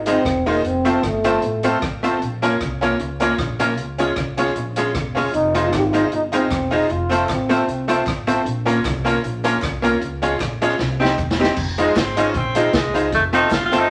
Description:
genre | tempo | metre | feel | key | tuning
ska | 154 BPM | 4/4 | swing 53% on 8ths | F minor | A4 = 440 Hz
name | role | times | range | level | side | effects
upright bass | bass | 0.0-13.8 s | E1 to Db2 | -29 LUFS | equal | none
breathy trombone | melody | 0.1-1.8, 5.3-8.1 s | A3 to G4 | -24 LUFS | equal | none
archtop guitar, miked and amplified | accompaniment | 0.1-13.9 s | Ab3 to G4 | -24 LUFS | equal | none
tack piano | stabs | 0.1-13.9 s | C4 to Db5 | -25 LUFS | equal | none
swinging big-band drum kit | drums | 0.1-13.8 s | crash cymbal, hi-hat, kick drum, rim click, snare drum | -28 LUFS | equal | none
group handclap | percussion | 5.7-13.6 s | none | -39 LUFS | equal | none
warm tenor saxophone | melody | 11.8-13.9 s | Ab3 to F4 | -23 LUFS | equal | none
room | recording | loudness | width
wet studio reverb, RT60 0.8 s | none | -19 LUFS | mono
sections
0.0-11.6 A section; 11.6-13.9 B section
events
drum fill 10.8-11.6; tenor saxophone solo 11.6-13.9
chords
0.0 Fm7; 0.6 F; 2.2 Bbm; 3.8 Db; 5.3 Fm7; 6.9 F; 8.5 Bbm; 10.0 Db; 10.8 Cm; 11.6 Fm7; 13.1 F

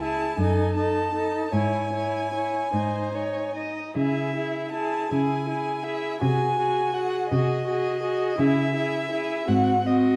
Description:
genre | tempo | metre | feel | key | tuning
classical, slow romantic movement for string quartet | 48-56 BPM (dotted quarters) | 6/8 | rubato | C# minor | A4 = 440 Hz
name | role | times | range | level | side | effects
rich violin | melody | 0.0-10.2 s | D#5 to A5 | -31 LUFS | equal | none
rich violin | second line | 0.0-10.2 s | F#4 to D#5 | -32 LUFS | equal | none
rich viola | accompaniment | 0.0-10.2 s | B#3 to F#4 | -30 LUFS | equal | none
rich cello | bass | 0.0-10.2 s | C#2 to C#3 | -30 LUFS | equal | none
room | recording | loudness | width
wet recital hall reverb, RT60 1.7 s | dark, warm production | -25 LUFS | mono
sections
0.0-10.2 A section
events
none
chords
0.4 D#dim/F#; 1.5 C#m/G#; 2.7 G#; 4.0 C#m; 6.2 G#7/B#; 8.4 C#m; 9.5 G#7

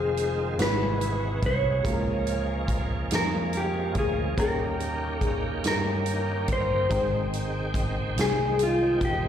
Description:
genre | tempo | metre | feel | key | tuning
slow gospel | 48 BPM (dotted quarters) | 6/8 | straight | Ab major | A4 = 437 Hz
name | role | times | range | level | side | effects
mellow electric guitar | melody | 0.0-9.3 s | F4 to Db5 | -27 LUFS | left 1 dB | slapback echo, plate reverb
warm concert grand piano | accompaniment | 0.0-9.3 s | Ab2 to G5 | -34 LUFS | left 2 dB | plate reverb, slapback echo
bright tonewheel organ | sustained chords | 0.0-9.3 s | C3 to G5 | -33 LUFS | right 2 dB | fast rotary speaker, overdrive, chorus vibrato, plate reverb
fingered electric bass | bass | 0.0-9.3 s | Fb1 to G2 | -30 LUFS | equal | none
swinging big-band drum kit | drums | 0.2-9.2 s | hi-hat, kick drum, snare drum | -31 LUFS | right 1 dB | none
room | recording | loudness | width
moderate club reverb, RT60 0.5 s | live gig heard through the venue's PA, recital hall reverb | -24 LUFS | side -9 dB against mid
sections
0.0-9.3 A section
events
none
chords
0.0 Fm7; 0.6 Ab7alt; 1.9 Db6; 4.4 Eb7; 6.9 Abmaj7

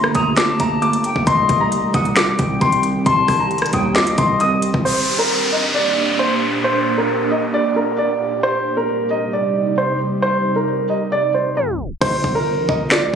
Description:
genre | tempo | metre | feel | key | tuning
hip hop, trap | 134 BPM | 4/4 | half-time | G minor | A4 = 440 Hz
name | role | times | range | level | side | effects
dark baby grand piano | melody | 0.0-13.2 s | Bb4 to Eb6 | -18 LUFS | equal | low-pass filter, ping-pong delay
jazz flute | second line | 0.0-4.8 s | Eb5 to C6 | -26 LUFS | left 1 dB | ping-pong delay
ethereal airy pad | sustained chords | 0.0-12.0 s | Bb2 to G4 | -23 LUFS | right 2 dB | ensemble chorus, built-in reverb
distorted 808-style bass | bass | 0.0-4.8, 12.0-13.1 s | G1 to Eb2 | -22 LUFS | equal | distortion
trap drum kit | drums | 0.0-4.8, 12.0-13.0 s | crash cymbal, hi-hat, kick drum, rim click, snare drum | -20 LUFS | equal | vintage 12-bit sampler grit
downlifter | sound effects | 4.9-8.4 s | none | -21 LUFS | equal | none
room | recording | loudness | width
light reverb | recorded on a phone in the room, club reverb, tape stop | -15 LUFS | side -7 dB against mid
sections
0.0-4.9 A section; 4.9-12.0 B section; 12.0-13.2 C section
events
tape stop 11.6-12.0; hi-hats muted 12.0-13.2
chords
0.0 Gmadd9; 1.3 Cm; 4.9 Gm; 8.4 Cm; 12.0 Gm

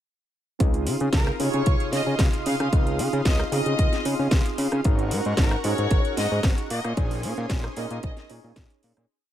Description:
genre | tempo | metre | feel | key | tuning
nu-disco, nu disco | 113 BPM | 4/4 | straight | Db major | A4 = 440 Hz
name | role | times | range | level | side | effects
bright tine electric piano | accompaniment | 0.6-9.1 s | C3 to Db5 | -30 LUFS | equal | medium stereo tremolo
lush unison pad | sustained chords | 0.6-9.1 s | Db4 to Eb6 | -36 LUFS | right 1 dB | chorus, sidechain pumping
fat analog bass | bass | 0.6-9.1 s | Ab1 to Db3 | -26 LUFS | equal | tube saturation, sidechain pumping
electronic kick drum | drums | 0.6-8.7 s | none | -22 LUFS | equal | none
house drum kit | drums | 0.6-9.1 s | hi-hat, rim click, snare drum | -31 LUFS | equal | none
warm chamber violin section | melody | 1.1-8.3 s | Bb4 to F5 | -32 LUFS | equal | dub echo
room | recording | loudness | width
digital ambience | none | -21 LUFS | side -11 dB against mid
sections
0.6-9.1 drop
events
drop 0.6-9.1; fade-out 6.3-9.1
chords
0.6 Dbmaj9; 4.8 Ab9sus4; 6.7 Bbm11

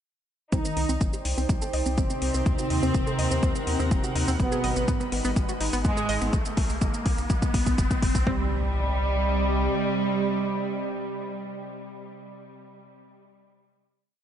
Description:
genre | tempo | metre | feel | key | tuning
melodic techno | 124 BPM | 4/4 | straight | unclear | A4 = 443 Hz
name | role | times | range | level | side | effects
analog synth brass | melody | 0.5-11.7 s | Ab2 to Eb4 | -31 LUFS | right 4 dB | chorus, sidechain pumping, tape echo
warm studio violin section | second line | 0.5-11.7 s | G3 to Eb4 | -34 LUFS | left 1 dB | sidechain pumping, low-pass filter, dub echo
evolving wavetable pad | sustained chords | 1.0-11.7 s | C3 to Cb6 | -35 LUFS | equal | chorus, built-in reverb, sidechain pumping
analog pluck | arpeggios | 0.5-8.5 s | Cb4 to Eb5 | -33 LUFS | equal | chorus, cassette tape, sidechain pumping, dub echo
round analog bass | bass | 0.5-9.7 s | Eb1 to Ab2 | -28 LUFS | equal | sidechain pumping
bowed-like drone | drone | 1.3-11.7 s | C3 to G4 | -40 LUFS | right 1 dB | built-in reverb, sidechain pumping
electronic kick drum | drums | 0.5-8.4 s | none | -25 LUFS | left 1 dB | overdrive, studio reverb
electronic shaker and hi-hat | drums | 0.5-8.2 s | none | -36 LUFS | equal | overdrive, studio reverb
riser and impact | sound effects | 3.6-11.7 s | none | -35 LUFS | left 1 dB | none
room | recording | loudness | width
light reverb | nothing above 10.6 kHz | -23 LUFS | side -9 dB against mid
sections
0.5-8.3 build; 8.3-12.1 final chord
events
build-up 0.5-8.3; filter sweep on synth pluck 0.5-6.3; filter sweep on analog polysynth 0.5-6.3; filter sweep on violin section 0.5-6.3; riser 3.6-8.3; drum fill 4.4-8.3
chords
0.5 Cmadd9; 2.5 Ebm; 4.4 Abm7; 6.3 B5; 8.3 Cmadd9

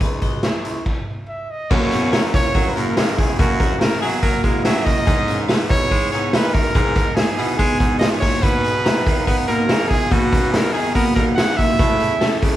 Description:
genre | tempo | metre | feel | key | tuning
jangly indie pop | 143 BPM | 4/4 | straight | unclear | A4 = 440 Hz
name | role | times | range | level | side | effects
twelve-string electric guitar | arpeggios | 0.0-12.6 s | A3 to A#5 | -24 LUFS | left 2 dB | spring reverb
bright baritone saxophone | bass | 0.0-12.6 s | C#2 to B3 | -25 LUFS | right 1 dB | none
raw garage drum kit | drums | 0.0-12.5 s | crash cymbal, hi-hat, kick drum, snare drum | -18 LUFS | equal | none
clear trumpet | melody | 1.3-12.4 s | F#4 to F#5 | -22 LUFS | right 1 dB | none
electric guitar through a small old amp | accompaniment | 1.7-12.6 s | F#2 to E4 | -26 LUFS | right 4 dB | none
room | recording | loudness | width
moderate large studio reverb, RT60 0.7 s | band playing live in one room, vinyl crackle | -15 LUFS | side -13 dB against mid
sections
0.0-1.7 A section; 1.7-12.6 B section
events
stop 0.9-1.7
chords
0.0 C#madd9; 1.7 F#7; 5.1 Emaj7; 8.4 Bmaj7; 11.8 Amaj7

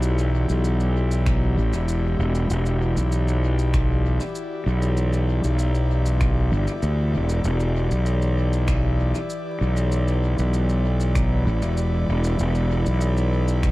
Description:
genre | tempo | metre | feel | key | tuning
ambient dub | 97 BPM | 4/4 | straight | E minor | A4 = 441 Hz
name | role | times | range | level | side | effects
airy breathy pad | sustained chords | 0.0-13.7 s | E3 to D5 | -28 LUFS | left 1 dB | chorus
fuzz fingered electric bass | bass | 0.0-13.7 s | E1 to D2 | -20 LUFS | equal | overdrive
electronic shaker and finger snaps | drums | 0.0-13.7 s | none | -38 LUFS | equal | overdrive, dub echo
electronic kick drum | drums | 1.3-13.7 s | none | -24 LUFS | equal | none
room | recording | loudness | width
little or no reverb | echo-heavy mix, vinyl crackle | -19 LUFS | side -19 dB against mid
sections
0.0-13.7 A section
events
none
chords
0.0 Em9; 7.4 G/E

